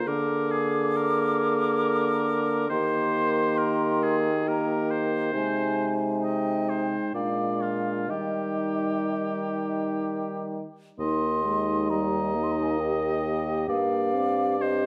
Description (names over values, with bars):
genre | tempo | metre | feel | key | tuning
classical, slow romantic movement for wind quintet | 61-70 BPM | 3/4 | rubato | Eb major | A4 = 443 Hz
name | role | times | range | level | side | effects
mellow hollow concert flute | melody | 0.0-14.9 s | Eb5 to D6 | -32 LUFS | equal | none
clear oboe | second line | 0.0-14.9 s | F4 to Eb5 | -35 LUFS | equal | none
dark clarinet | accompaniment | 0.0-14.9 s | D4 to Ab4 | -33 LUFS | equal | none
warm French horn | accompaniment | 0.0-14.9 s | G3 to C4 | -34 LUFS | equal | none
warm bassoon | bass | 0.1-14.9 s | Eb2 to Eb3 | -31 LUFS | equal | none
room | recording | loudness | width
moderate recital hall reverb, RT60 1.5 s | dark, warm production | -26 LUFS | mono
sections
0.0-11.0 A section; 11.0-14.9 B section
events
none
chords
0.1 Bb7/D; 2.7 Eb; 5.3 Ab/C; 7.1 Bb7; 8.1 Eb; 13.7 Eb/G